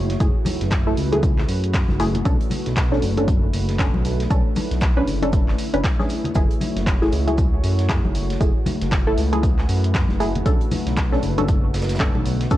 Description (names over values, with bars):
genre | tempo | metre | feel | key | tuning
deep house | 117 BPM | 4/4 | swing 59% on 16ths | F# minor | A4 = 440 Hz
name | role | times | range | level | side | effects
warbly tape-like pad | sustained chords | 0.0-12.6 s | D3 to C#5 | -28 LUFS | equal | chorus, built-in reverb, sidechain pumping
smooth synth bass | bass | 0.0-12.6 s | F#1 to F#2 | -23 LUFS | equal | none
big rock drum kit | drums | 0.1-12.6 s | hi-hat, shaker, snare drum | -41 LUFS | right 1 dB | none
punchy analog drum machine | drums | 0.1-12.6 s | handclaps, hi-hat | -30 LUFS | equal | none
filtered dub chord stab | stabs | 0.2-12.6 s | A3 to B4 | -25 LUFS | equal | phaser, sidechain pumping, tape echo
electronic kick drum | drums | 0.2-12.6 s | none | -20 LUFS | equal | none
congas | percussion | 0.4-12.2 s | none | -29 LUFS | left 1 dB | none
room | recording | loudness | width
small room ambience | cassette tape | -18 LUFS | side -14 dB against mid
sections
0.0-12.6 A section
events
none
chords
0.0 F#m7; 2.3 Bm7; 6.4 F#m7; 10.5 Bm7